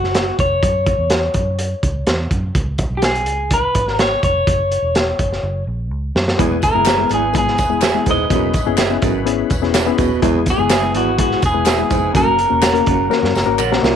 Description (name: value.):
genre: uptempo 1960s-style soul.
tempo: 125 BPM.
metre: 4/4.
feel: straight.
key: unclear.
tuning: A4 = 441 Hz.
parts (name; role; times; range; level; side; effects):
electric guitar through a small old amp; melody; 0.0-13.8 s; F#4 to D#5; -18 LUFS; equal; none.
vintage muted fingered electric bass; bass; 0.0-13.9 s; D#1 to F#2; -23 LUFS; right 1 dB; none.
crunchy breakbeat drum kit; drums; 0.0-14.0 s; hi-hat, kick drum, snare drum; -19 LUFS; right 1 dB; none.
barky reed electric piano; accompaniment; 6.4-14.0 s; G#3 to A#5; -20 LUFS; left 12 dB; overdrive.
overdriven tonewheel organ; sustained chords; 6.4-14.0 s; C#3 to B4; -27 LUFS; left 11 dB; chorus vibrato, lush chorus.
warm baritone saxophone; riff; 6.4-14.0 s; E2 to B2; -21 LUFS; right 12 dB; none.
congas; percussion; 6.4-13.9 s; none; -33 LUFS; right 13 dB; none.
tambourine and handclaps; percussion; 6.4-13.9 s; none; -30 LUFS; left 2 dB; none.
electric guitar through a small old amp; stabs; 6.9-13.7 s; G#4 to F#5; -24 LUFS; right 10 dB; none.
room: moderate spring reverb, RT60 1.1 s, small room ambience.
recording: 1960s-style stereo with parts hard left and right.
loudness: -14 LUFS.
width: side -8 dB against mid.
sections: 0.0-14.0 A section.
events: drum fill 5.4-6.4, 13.1-14.0; reed electric piano fill 13.1-14.0.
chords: 0.0 N.C.; 0.6 F#5; 2.5 C#7(no3); 4.5 F#5; 5.4 F#; 6.4 E; 8.3 C#m7/E; 10.2 E; 12.2 F#.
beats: 0.15 | 0.63 1.11 1.59 2.07 | 2.55 3.03 3.51 3.99 | 4.47 4.95 5.43 5.91 | 6.39 6.87 7.35 7.83 | 8.31 8.79 9.27 9.75 | 10.23 10.71 11.19 11.67 | 12.15 12.63 13.12 13.60.